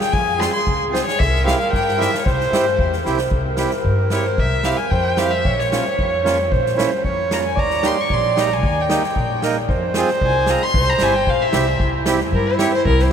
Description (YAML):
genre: klezmer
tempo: 113 BPM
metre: 2/4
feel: straight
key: C phrygian dominant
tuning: A4 = 440 Hz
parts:
  - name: rich violin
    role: melody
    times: 0.0-13.1 s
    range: Bb4 to Db6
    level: -22 LUFS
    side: left 3 dB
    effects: none
  - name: clear clarinet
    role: second line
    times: 0.0-13.1 s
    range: E4 to D5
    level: -21 LUFS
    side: right 2 dB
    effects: none
  - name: street-band drum kit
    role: drums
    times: 0.0-13.1 s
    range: kick drum, snare drum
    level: -23 LUFS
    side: equal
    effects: none
  - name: upright bass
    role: bass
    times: 0.1-13.1 s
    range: G1 to G2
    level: -23 LUFS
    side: equal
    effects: none
  - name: accordion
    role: accompaniment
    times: 0.4-12.7 s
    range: Bb3 to Bb4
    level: -24 LUFS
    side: right 4 dB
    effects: none
room: wet huge ambient reverb, RT60 9.3 s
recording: in a vast, echoing space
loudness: -16 LUFS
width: side -8 dB against mid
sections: 0.0-3.3 A section; 3.3-11.8 B section; 11.8-13.1 C section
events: drum fill 3.0; violin solo 3.3-11.8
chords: 0.0 Fm; 1.2 C; 5.4 Bbm; 7.6 Eb; 9.7 Fm; 10.8 C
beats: | 0.12 0.65 | 1.19 1.72 | 2.25 2.78 | 3.32 3.85 | 4.38 4.92 | 5.45 5.98 | 6.51 7.04 | 7.58 8.11 | 8.64 9.16 | 9.69 10.22 | 10.75 11.28 | 11.80 12.33 | 12.86